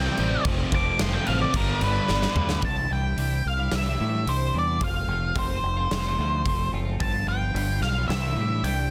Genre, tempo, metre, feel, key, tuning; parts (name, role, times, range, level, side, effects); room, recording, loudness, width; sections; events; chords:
quiet-loud alternative rock; 110 BPM; 4/4; straight; A4 = 441 Hz
octave-fuzz lead guitar; melody; 0.0-8.9 s; Bb4 to D6; -30 LUFS; equal; distortion, slapback echo
cranked stack guitar; riff; 0.0-2.6 s; F2 to C4; -33 LUFS; equal; overdrive
thick fuzz guitar; riff; 0.0-2.6 s; F2 to E4; -34 LUFS; equal; distortion
growling fingered electric bass; bass; 0.0-8.9 s; F1 to A2; -29 LUFS; equal; overdrive
huge arena drum kit; drums; 0.2-8.8 s; crash cymbal, hi-hat, kick drum, snare drum, toms; -32 LUFS; equal
twelve-string electric guitar; arpeggios; 2.6-8.9 s; G2 to F4; -35 LUFS; equal; subtle chorus
little or no reverb; dense, heavily limited modern master; -25 LUFS; mono
0.0-2.6 A section; 2.6-8.9 B section
lead electric guitar solo 0.0-2.6; drum fill 2.1-2.6; half time 2.6-8.9
0.5 F; 1.5 G; 2.6 Cadd9; 4.8 F; 7.0 G7; 8.1 Cadd9